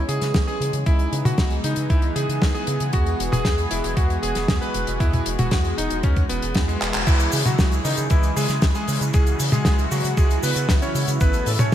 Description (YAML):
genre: italo disco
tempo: 116 BPM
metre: 4/4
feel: straight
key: C# minor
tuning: A4 = 440 Hz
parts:
  - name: warm analog pad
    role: sustained chords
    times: 0.0-11.7 s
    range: C#3 to A4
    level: -28 LUFS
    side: equal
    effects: chorus
  - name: round analog bass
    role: bass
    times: 0.0-11.7 s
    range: E1 to C#3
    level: -24 LUFS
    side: equal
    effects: none
  - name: bright electric grand piano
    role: melody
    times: 0.1-11.7 s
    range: D#3 to C#5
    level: -27 LUFS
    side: equal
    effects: lush chorus, ping-pong delay
  - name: damped 70s drum kit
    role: drums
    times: 0.1-11.7 s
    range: cabasa, crash cymbal, handclaps, hi-hat, snare drum, toms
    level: -24 LUFS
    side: left 1 dB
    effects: none
  - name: electronic kick drum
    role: drums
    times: 0.3-11.7 s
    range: none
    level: -20 LUFS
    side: equal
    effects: none
room: light reverb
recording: bright 1980s-style digital production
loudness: -18 LUFS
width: side -11 dB against mid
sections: 0.0-7.1 A section; 7.1-11.7 B section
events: drum fill 6.8; band accent 6.9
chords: 0.0 C#m7; 2.9 Eadd9; 7.1 C#m; 11.2 A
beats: 0.35 | 0.86 1.38 1.90 2.42 | 2.93 3.45 3.97 4.49 | 5.00 5.52 6.04 6.55 | 7.07 7.59 8.11 8.62 | 9.14 9.66 10.17 10.69 | 11.21 11.73